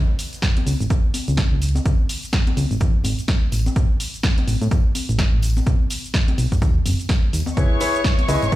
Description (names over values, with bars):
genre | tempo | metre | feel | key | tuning
piano house | 126 BPM | 4/4 | swing 59% on 16ths | C# minor | A4 = 440 Hz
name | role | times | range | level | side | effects
solid FM bass | bass | 0.0-8.6 s | F#1 to A2 | -20 LUFS | equal | sidechain pumping
punchy analog drum machine | drums | 0.2-8.6 s | hi-hat, shaker, snare drum | -27 LUFS | right 1 dB | none
tambourine and congas | percussion | 0.2-8.6 s | none | -32 LUFS | left 4 dB | none
electronic kick drum | drums | 0.4-8.6 s | none | -19 LUFS | equal | none
dark symphonic violin section | sustained chords | 7.6-8.6 s | C#5 to C#6 | -25 LUFS | left 3 dB | sidechain pumping
warm concert grand piano | riff | 7.6-8.6 s | E4 to D#5 | -24 LUFS | left 1 dB | sidechain pumping, dub echo
room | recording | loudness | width
small room reverb | played on a big sound system in a bare room, large studio reverb | -17 LUFS | side -15 dB against mid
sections
0.0-8.6 A section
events
none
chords
0.0 C#5; 3.5 A5; 5.7 B; 7.6 C#m7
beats
0.43 0.90 1.38 | 1.86 2.33 2.81 3.28 | 3.76 4.24 4.71 5.19 | 5.67 6.14 6.62 7.09 | 7.57 8.05 8.52